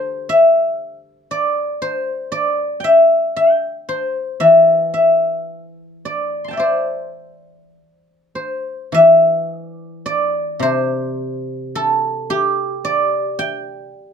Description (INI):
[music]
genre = chinese traditional, Chinese solo plucked strings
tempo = 50-60 BPM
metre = 4/4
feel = rubato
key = C gong mode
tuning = A4 = 440 Hz
[part]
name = guzheng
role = solo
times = 0.0-14.1 s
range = C3 to C6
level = -14 LUFS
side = left 1 dB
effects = none
[sound]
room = little or no reverb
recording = none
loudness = -14 LUFS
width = side -7 dB against mid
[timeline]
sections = 0.0-8.9 A section; 8.9-14.1 B section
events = none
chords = none